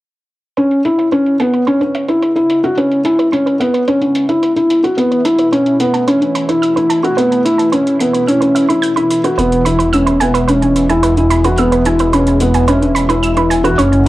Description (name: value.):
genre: piano and strings electronica.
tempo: 109 BPM.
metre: 4/4.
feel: straight.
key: C# minor.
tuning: A4 = 441 Hz.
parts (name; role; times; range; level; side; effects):
lush unison pad; sustained chords; 0.6-14.1 s; B2 to F#4; -23 LUFS; equal; chorus, phaser, cassette tape.
analog pluck; arpeggios; 0.6-13.9 s; B4 to G6; -21 LUFS; right 6 dB; chorus, cassette tape, tape echo.
felt-muted upright piano; riff; 0.6-14.1 s; B3 to F#4; -12 LUFS; equal; cassette tape, tape echo.
electronic hi-hat; drums; 0.6-14.0 s; none; -29 LUFS; equal; overdrive, low-pass filter on hats, low-pass filter on room.
dark detuned saw bass; bass; 9.4-14.1 s; E1 to F#1; -16 LUFS; equal; none.
riser; sound effects; 13.8-14.1 s; none; barely audible; none; none.
room: moderate studio reverb, RT60 0.5 s.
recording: home recording on cassette.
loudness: -11 LUFS.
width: side -16 dB against mid.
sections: 0.6-14.1 A section.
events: fade-in on analog synth pad 0.6-14.1; filter sweep on synth arpeggio sound 0.6-14.1.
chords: 0.6 C#m7; 5.0 Asus2; 9.4 E.